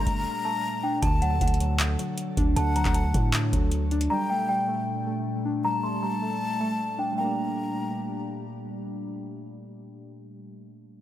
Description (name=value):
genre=hip hop, trap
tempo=156 BPM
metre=4/4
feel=half-time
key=G harmonic minor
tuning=A4 = 440 Hz
part: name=celesta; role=melody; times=0.0-8.3 s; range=F#5 to C6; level=-30 LUFS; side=equal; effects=low-pass filter, digital delay
part: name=breathy jazz flute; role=second line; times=0.0-8.3 s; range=F#5 to Bb5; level=-34 LUFS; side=left 5 dB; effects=digital delay
part: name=warbly lo-fi synth keys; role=accompaniment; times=0.0-11.0 s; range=D3 to D4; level=-31 LUFS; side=equal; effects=chorus, low-pass filter
part: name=glassy FM pad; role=sustained chords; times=0.0-10.4 s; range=Bb2 to A4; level=-35 LUFS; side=left 1 dB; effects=ensemble chorus, built-in reverb, low-pass filter
part: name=long sustained 808-style bass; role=bass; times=0.0-4.1 s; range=G1 to A2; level=-26 LUFS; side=equal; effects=none
part: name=booming analog drum machine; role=drums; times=0.1-4.1 s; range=handclaps, hi-hat, kick drum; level=-26 LUFS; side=equal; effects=none
room=light reverb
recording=none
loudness=-24 LUFS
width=side -12 dB against mid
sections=0.0-1.0 A section; 1.0-7.2 B section; 7.2-10.3 C section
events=drums muted 0.3-1.0; filter sweep 1.0-7.2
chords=0.0 Gmadd9; 1.0 D; 4.1 Gmadd9